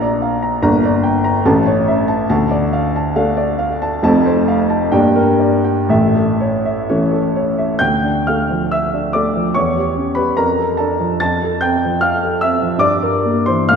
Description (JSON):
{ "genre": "classical, romantic character piece for solo piano", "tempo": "59-76 BPM", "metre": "2/4", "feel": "rubato", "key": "D minor", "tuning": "A4 = 440 Hz", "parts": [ { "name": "warm grand piano", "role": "solo", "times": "0.0-13.8 s", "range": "F1 to A6", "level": "-13 LUFS", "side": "equal", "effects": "none" } ], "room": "wet concert hall reverb, RT60 2.0 s", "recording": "heard from further back in the room", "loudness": "-13 LUFS", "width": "side -6 dB against mid", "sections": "0.0-7.8 A section; 7.8-13.8 B section", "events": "none", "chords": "0.0 Bb; 0.6 Gm; 1.5 A; 2.3 Dm; 4.0 F; 4.9 Gm; 5.9 A; 7.8 Dm; 9.6 C#dim/E; 10.4 Dm/F; 11.2 F; 12.8 Edim/G", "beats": "| 0.63 1.45 | 2.28 3.14 | 4.02 4.92 | 5.89 6.87 | 7.82 8.72 | 9.56 10.38 | 11.21 12.02 | 12.82 13.70" }